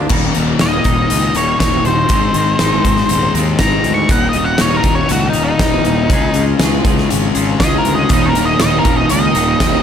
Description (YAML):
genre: quiet-loud alternative rock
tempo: 120 BPM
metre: 4/4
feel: straight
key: Eb mixolydian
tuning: A4 = 440 Hz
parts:
  - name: twangy electric guitar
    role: arpeggios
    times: 0.0-9.8 s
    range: Eb2 to Ab4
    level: -22 LUFS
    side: right 4 dB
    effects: wide subtle chorus
  - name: fuzz fingered electric bass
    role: bass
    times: 0.0-9.8 s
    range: Eb1 to Eb2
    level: -19 LUFS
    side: right 1 dB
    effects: overdrive
  - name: thick fuzz guitar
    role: riff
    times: 0.1-9.8 s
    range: Eb2 to Db4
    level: -18 LUFS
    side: left 9 dB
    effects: distortion
  - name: huge arena drum kit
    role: drums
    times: 0.1-9.7 s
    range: crash cymbal, hi-hat, kick drum, snare drum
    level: -16 LUFS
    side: equal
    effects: none
  - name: octave-fuzz lead guitar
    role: melody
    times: 0.6-9.8 s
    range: Eb4 to Db6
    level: -18 LUFS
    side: left 2 dB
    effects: distortion, analog delay
  - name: distorted electric guitar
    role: riff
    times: 8.1-9.8 s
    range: Eb2 to Eb3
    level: -19 LUFS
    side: right 17 dB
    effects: distortion
room: small room ambience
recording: none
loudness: -11 LUFS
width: side -8 dB against mid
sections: 0.1-9.8 A section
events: lead electric guitar solo 0.1-9.8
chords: 0.1 Eb; 2.1 Ab; 4.1 Eb; 6.1 Db; 8.1 Eb